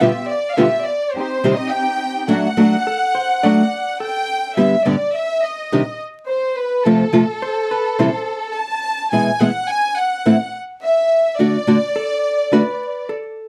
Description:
tango; 106 BPM; 4/4; rubato; G major; A4 = 440 Hz
warm studio violin section; second line; 0.0-13.1 s; A4 to A5; -22 LUFS; equal
nylon-string guitar; accompaniment; 0.0-12.6 s; F2 to G4; -16 LUFS; equal
muted studio string section; stabs; 0.0-3.6 s; A3 to G4; -26 LUFS; equal
vintage hollow-body jazz guitar; second line; 2.9-8.4, 12.0-13.5 s; A4 to D5; -28 LUFS; equal
moderate studio reverb, RT60 0.5 s; dark, warm production, vinyl crackle; -18 LUFS; mono
0.0-4.6 A section; 4.6-13.5 A section
violin section solo 0.0-4.6, 4.6-13.5; band accent 2.3-4.6
0.0 G7/B; 1.2 Cm; 2.3 D; 4.6 G; 5.7 Cmadd9; 6.9 F; 8.0 C; 9.1 E/B; 10.3 Am; 11.4 D

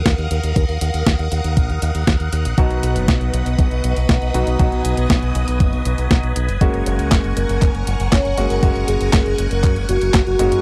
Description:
italo disco; 119 BPM; 4/4; straight; A4 = 442 Hz
phased string machine; sustained chords; 0.0-10.6 s; Bb4 to Eb6; -29 LUFS; equal; ensemble chorus, phaser
fingered electric bass with an envelope filter; bass; 0.0-10.6 s; F#1 to Gb2; -22 LUFS; equal
clean 12-bit digital drum machine; drums; 0.1-10.6 s; handclaps, hi-hat, snare drum; -23 LUFS; equal; overdrive
electronic kick drum; drums; 0.1-10.2 s; -19 LUFS; equal; overdrive
warm grand piano; stabs; 2.6-10.6 s; Ab2 to F#4; -26 LUFS; equal; low-pass filter
soft octave-layered synth lead; melody; 6.6-10.6 s; Gb4 to Db5; -24 LUFS; equal; chorus, tremolo, cassette tape, tape echo
little or no reverb; dry, close 1970s-style studio recording; -18 LUFS; mono
0.0-10.6 A section
0.0 Ebmadd9; 2.6 B; 6.6 Gbadd9

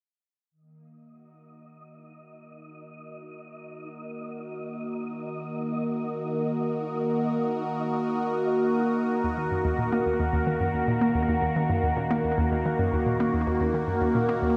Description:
ambient, sequencer-driven space music; 110 BPM; 4/4; straight; Eb minor; A4 = 441 Hz
phased analog pad; sustained chords; 0.5-14.6 s; Eb3 to Bb4; -29 LUFS; equal; phaser, chorus
wind-like tuned noise texture; texture; 1.8-14.6 s; Bb3 to Eb5; -41 LUFS; equal; built-in reverb, ensemble chorus
thumb-piano-like synth pluck; arpeggios; 9.2-14.5 s; Db4 to Eb4; -44 LUFS; equal
hollow square pluck; riff; 9.2-14.5 s; Eb2 to Bb3; -29 LUFS; equal; chorus, delay
wet plate reverb, RT60 3.5 s; dreamy mix soaked in reverb; -26 LUFS; mono
0.5-9.2 A section; 9.2-14.6 B section
fade-in on synth texture 0.5-9.2; filter sweep on analog synth pad 0.5-9.2
0.5 Ebm

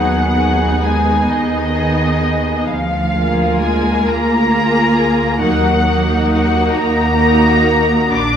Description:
classical, slow romantic movement for string orchestra; 44 BPM (dotted quarters); 6/8; rubato; Eb minor; A4 = 440 Hz
muted studio violin section; melody; 0.0-8.4 s; Eb5 to D6; -18 LUFS; left 2 dB
muted studio violin section; second line; 0.0-8.1 s; Gb4 to Bb4; -21 LUFS; left 2 dB
muted symphonic viola section; accompaniment; 0.0-8.1 s; Bb3 to F4; -18 LUFS; right 1 dB
muted chamber cello section; bass; 0.0-8.4 s; Eb3 to D4; -19 LUFS; right 1 dB
muted studio double bass section; bass; 0.0-8.4 s; Bb1 to Eb2; -20 LUFS; right 2 dB
moderate scoring stage reverb, RT60 1.6 s; -12 LUFS; side -8 dB against mid
0.0-8.4 A section
0.0 Abm/Eb; 2.7 Bb7/D; 5.4 Ebm

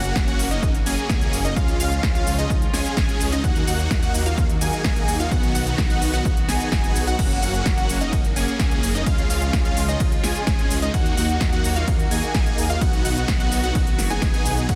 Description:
EDM, festival progressive house; 128 BPM; 4/4; straight; F# major; A4 = 440 Hz
rich chamber string section; sustained chords; 0.0-14.8 s; C#3 to F#4; -34 LUFS; equal; sidechain pumping
plucky unison lead; arpeggios; 0.0-14.8 s; D#5 to G#5; -32 LUFS; equal; analog chorus, sidechain pumping, dub echo
supersaw chords; riff; 0.0-14.8 s; G#3 to G#4; -29 LUFS; equal; phaser, sidechain pumping, dub echo
detuned saw bass; bass; 0.0-14.8 s; F#1 to D#2; -28 LUFS; equal; sidechain pumping
big-room dance drum kit; drums; 0.0-14.8 s; crash cymbal, hi-hat, ride cymbal, shaker, snare drum; -31 LUFS; equal; overdrive
electronic kick drum; drums; 0.2-14.8 s; -24 LUFS; equal; overdrive
little or no reverb; dense, heavily limited modern master; -21 LUFS; mono
0.0-14.8 A section
0.0 F#; 1.6 C#; 3.4 D#m; 5.3 B; 7.2 F#; 9.1 C#; 10.9 D#m; 12.8 B

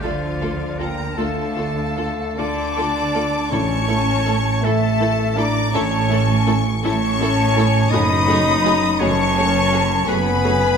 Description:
cinematic; 48-56 BPM (dotted quarters); 6/8; rubato; A4 = 440 Hz
rich studio violin section; melody; 0.0-10.8 s; F5 to Eb6; -26 LUFS; left 4 dB
clear oboe; second line; 0.0-10.8 s; F4 to Eb5; -27 LUFS; equal
flute section; second line; 0.0-10.8 s; D5 to B5; -25 LUFS; left 1 dB
rich studio violin section; second line; 0.0-10.5 s; G#4 to C#5; -31 LUFS; left 2 dB
rich studio viola section; accompaniment; 0.0-10.5 s; F3 to F#4; -27 LUFS; right 2 dB
mellow French horn section; sustained chords; 0.0-10.8 s; F3 to Eb4; -23 LUFS; left 5 dB
rich studio cello section; bass; 0.0-10.8 s; F#2 to D3; -24 LUFS; right 4 dB
rich studio double bass section; bass; 0.0-10.8 s; F#1 to D2; -23 LUFS; right 3 dB
timpani; percussion; 3.5-4.6 s; A2; -30 LUFS; left 1 dB
wet scoring stage reverb, RT60 1.5 s; -16 LUFS; side -6 dB against mid
0.0-10.8 A section
0.0 Dm; 3.5 A; 7.9 F#madd9

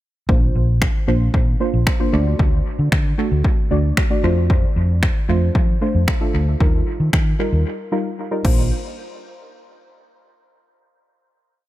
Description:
dance-pop; 114 BPM; 4/4; straight; Bb major; A4 = 440 Hz
deep mellow chord stab; accompaniment; 0.3-8.7 s; G3 to D5; -23 LUFS; right 1 dB; chorus, sidechain pumping, dub echo
vintage muted fingered electric bass; bass; 0.3-8.7 s; Bb1 to F3; -18 LUFS; equal; sidechain pumping
house drum kit; drums; 0.3-8.6 s; crash cymbal, finger snaps, kick drum; -18 LUFS; equal; overdrive
digital ambience; echo-heavy mix; -16 LUFS; side -15 dB against mid
0.3-8.7 verse; 8.7-10.8 final hit
break 7.7-8.7
0.3 Bbadd9; 2.1 D; 4.2 F6; 6.6 Ebadd9; 8.4 Bbadd9; 8.7 N.C.

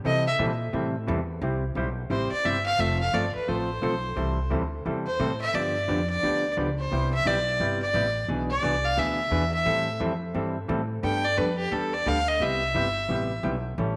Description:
country, western swing; 175 BPM; 4/4; swing 63% on 8ths; C major; A4 = 442 Hz
hollow-body jazz guitar; accompaniment; 0.0-14.0 s; B2 to A4; -32 LUFS; equal
upright bass; bass; 0.0-14.0 s; F1 to C3; -32 LUFS; equal
clear fiddle; melody; 0.1-13.4 s; G4 to G5; -29 LUFS; equal; slapback echo
moderate echo chamber reverb, RT60 1.8 s, small room ambience; -26 LUFS; mono
0.0-1.4 A section; 1.4-14.0 A section
fiddle solo 0.0-1.4, 1.4-14.0
0.0 C6; 1.4 C; 2.8 F; 4.2 C6; 5.5 G7; 6.9 Cmaj7; 8.3 E7/B; 9.7 Am7; 11.0 Gadd9; 12.4 Cmaj7

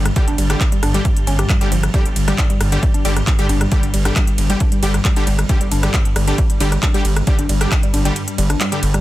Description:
driving peak-time techno; 135 BPM; 4/4; straight; A4 = 440 Hz
gritty driven synth bass; bass; 0.0-9.0 s; G1; -18 LUFS; equal; sidechain pumping
swarming drone; drone; 0.0-9.0 s; G2 to G3; -26 LUFS; equal; built-in reverb, sidechain pumping
techno drum kit; drums; 0.1-9.0 s; handclaps, hi-hat, ride cymbal, rim click; -24 LUFS; equal
woody wave-folded pluck; riff; 0.2-9.0 s; F3 to G4; -25 LUFS; equal; chorus, overdrive, cassette tape, sidechain pumping, dub echo
supersaw stab; stabs; 0.2-8.8 s; D3 to G4; -24 LUFS; equal; sidechain pumping, dub echo
electronic kick drum; drums; 0.2-7.8 s; -17 LUFS; equal
little or no reverb; dense, heavily limited modern master; -14 LUFS; side -16 dB against mid
0.0-9.0 A section
kick drops out 8.2-9.0
0.0 G5

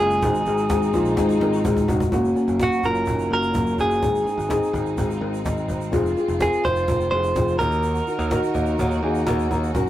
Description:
piano-driven pop; 126 BPM; 4/4; straight; Ab mixolydian; A4 = 438 Hz
direct-recorded clean electric guitar; melody; 0.0-9.0 s; Gb4 to C5; -23 LUFS; right 1 dB
felt-muted upright piano; accompaniment; 0.0-9.9 s; Ab2 to Bb5; -23 LUFS; left 2 dB
warm studio string section; sustained chords; 0.0-9.9 s; Db3 to Bb4; -32 LUFS; right 3 dB
modern bright picked electric bass; bass; 0.0-9.9 s; F1 to Eb2; -26 LUFS; equal
egg shaker; percussion; 0.1-9.9 s; -47 LUFS; right 6 dB
cajon; drums; 0.2-9.9 s; -28 LUFS; right 1 dB
wet small room reverb, RT60 0.5 s; rough rehearsal-room recording, warm saturation; -19 LUFS; side -13 dB against mid
0.0-2.1 A section; 2.1-9.9 B section
drum fill 1.2-2.1; felt piano fill 8.3-9.7
0.2 Ab; 2.1 Gb; 4.0 Ab; 5.9 Fm; 7.6 Ebm

